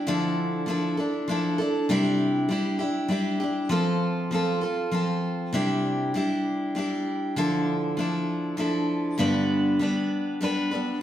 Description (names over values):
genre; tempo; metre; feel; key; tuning
rock; 99 BPM; 3/4; straight; C major; A4 = 439 Hz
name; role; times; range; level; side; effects
picked steel-string acoustic guitar; solo; 0.0-11.0 s; G2 to B4; -23 LUFS; equal; slapback echo
room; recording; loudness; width
wet stone room reverb, RT60 1.4 s; band playing live in one room; -23 LUFS; side -11 dB against mid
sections
0.0-11.0 A section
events
none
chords
0.1 Dmadd9; 1.9 Cadd9; 3.7 F; 5.5 Cadd9; 7.4 Dmadd9; 9.2 G